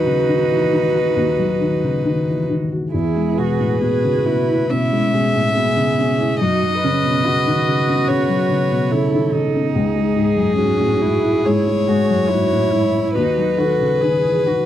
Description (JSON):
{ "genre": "neoclassical piano and strings", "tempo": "70 BPM", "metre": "4/4", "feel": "uneven beats, rubato", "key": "E major", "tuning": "A4 = 440 Hz", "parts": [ { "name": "warm violin", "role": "melody", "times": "0.0-14.7 s", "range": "G#4 to E5", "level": "-20 LUFS", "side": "left 3 dB", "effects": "none" }, { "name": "warm cello", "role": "second line", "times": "0.0-14.7 s", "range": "B3 to G#4", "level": "-24 LUFS", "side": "right 10 dB", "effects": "none" }, { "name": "dark viola", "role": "accompaniment", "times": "0.0-14.7 s", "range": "E4 to B4", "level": "-24 LUFS", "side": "right 6 dB", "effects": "none" }, { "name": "felt-muted upright piano", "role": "accompaniment", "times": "0.0-14.7 s", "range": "C#2 to F#4", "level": "-19 LUFS", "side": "left 2 dB", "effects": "none" } ], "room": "little or no reverb", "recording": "dry, close 1970s-style studio recording", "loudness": "-15 LUFS", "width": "side -11 dB against mid", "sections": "0.0-14.7 A section", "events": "none", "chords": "0.0 B/D#; 2.9 E; 6.4 F#m; 9.7 C#m; 13.2 B/D#" }